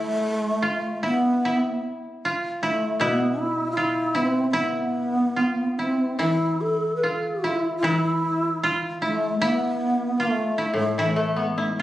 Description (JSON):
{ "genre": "japanese traditional, Japanese chamber music", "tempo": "76 BPM", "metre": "2/4", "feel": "uneven beats, rubato", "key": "unclear", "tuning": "A4 = 435 Hz", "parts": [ { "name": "breathy long shakuhachi", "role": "melody", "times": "0.0-11.8 s", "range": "A3 to B4", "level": "-24 LUFS", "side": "equal", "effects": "none" }, { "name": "koto", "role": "second line", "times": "0.0-11.8 s", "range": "E4 to F4", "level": "-27 LUFS", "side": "right 1 dB", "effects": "none" }, { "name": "koto", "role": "accompaniment", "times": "3.0-11.8 s", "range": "A2 to E4", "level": "-28 LUFS", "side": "left 2 dB", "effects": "none" } ], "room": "moderate recital hall reverb, RT60 1.6 s", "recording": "recorded on a phone in the room, studio reverb, compression", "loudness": "-21 LUFS", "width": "side -14 dB against mid", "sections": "0.0-11.8 A section", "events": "none", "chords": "none", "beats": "0.63 | 1.45 2.24 | 3.01 3.78 | 4.57 5.37 | 6.21 7.04 | 7.84 8.63 | 9.40 10.18 | 10.96 11.79" }